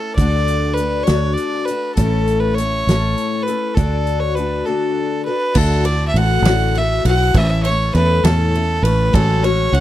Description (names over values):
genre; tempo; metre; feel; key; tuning
folk rock and heartland rock; 67 BPM (dotted quarters); 6/8; straight; unclear; A4 = 439 Hz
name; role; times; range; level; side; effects
clear fiddle; melody; 0.0-9.8 s; A4 to F#5; -20 LUFS; right 2 dB; none
picked twelve-string acoustic guitar; accompaniment; 0.0-9.8 s; A2 to C#5; -21 LUFS; left 6 dB; wide subtle chorus
fingered electric bass; bass; 0.2-9.8 s; A1 to E2; -17 LUFS; right 1 dB; none
natural country drum kit; drums; 0.2-9.8 s; crash cymbal, hi-hat, kick drum, ride cymbal, snare drum; -20 LUFS; right 1 dB; none
room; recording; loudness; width
little or no reverb; dry, close 1970s-style studio recording; -14 LUFS; side -13 dB against mid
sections
0.0-5.5 A section; 5.5-9.8 B section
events
none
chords
0.2 D; 2.0 A; 3.8 D; 5.5 Dadd9; 7.3 A; 9.1 F#madd9/A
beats
| 0.17 1.07 | 1.97 2.86 | 3.76 4.66 | 5.55 6.44 | 7.34 8.23 | 9.12